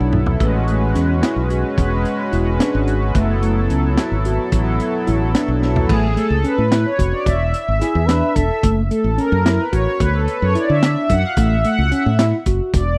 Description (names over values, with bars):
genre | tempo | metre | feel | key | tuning
progressive instrumental, band music in an uneven meter | 219 BPM (eighths) | 5/8 | straight | A major | A4 = 440 Hz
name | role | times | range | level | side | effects
chorused pulse-width pad | accompaniment | 0.0-13.0 s | F#3 to F#5 | -23 LUFS | equal | none
mellow tine electric piano | arpeggios | 0.0-12.8 s | A3 to F#4 | -24 LUFS | equal | none
modern bright fingered electric bass | bass | 0.0-13.0 s | E1 to D3 | -21 LUFS | equal | none
crunchy breakbeat drum kit | drums | 0.1-12.9 s | crash cymbal, hi-hat, kick drum, snare drum, toms | -22 LUFS | equal | none
breathy flugelhorn | second line | 7.8-8.8 s | G#4 to B4 | -24 LUFS | equal | none
room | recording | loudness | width
little or no reverb | dry, close 1970s-style studio recording | -17 LUFS | mono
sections
0.0-5.9 A section; 5.9-13.0 B section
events
drum fill 0.0-0.4, 5.6; analog synth pad solo 5.9-13.0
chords
0.4 Aadd9; 1.8 E7; 3.2 F#m7; 4.5 Asus2; 5.9 A; 7.3 E7; 8.6 F#m7; 10.0 D; 11.4 A